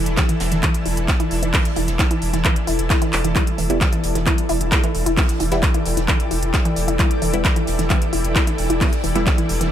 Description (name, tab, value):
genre	driving peak-time techno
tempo	132 BPM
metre	4/4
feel	straight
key	E minor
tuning	A4 = 445 Hz
part	saturated sub bass	bass	0.0-9.7 s	E1	-23 LUFS	equal	overdrive, sidechain pumping, low-pass filter
part	swarming drone	drone	0.0-9.7 s	E3 to E4	-28 LUFS	equal	built-in reverb, sidechain pumping
part	granular cloud pad	texture	0.0-9.7 s	A4 to A5	-29 LUFS	equal	built-in reverb, sidechain pumping
part	techno drum kit	drums	0.1-9.7 s	handclaps, hi-hat	-24 LUFS	equal	sidechain pumping on hats, studio reverb
part	resonant blip pluck	riff	0.2-9.7 s	E3 to E4	-25 LUFS	equal	phaser, sidechain pumping, digital delay
part	electronic kick drum	drums	0.2-9.4 s	none	-20 LUFS	equal	studio reverb
part	jazz brush drum kit	drums	0.2-9.7 s	hi-hat, snare drum	-34 LUFS	right 2 dB	sidechain pumping on hats, high-pass filter on hats, studio reverb, high-pass filter on snare, high-pass filter on room
part	filtered dub chord stab	stabs	3.4-9.3 s	G3 to E4	-27 LUFS	equal	phaser, sidechain pumping, ping-pong delay
room	light reverb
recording	none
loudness	-16 LUFS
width	side -10 dB against mid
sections	0.0-9.7 A section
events	drum fill 3.1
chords	0.0 Em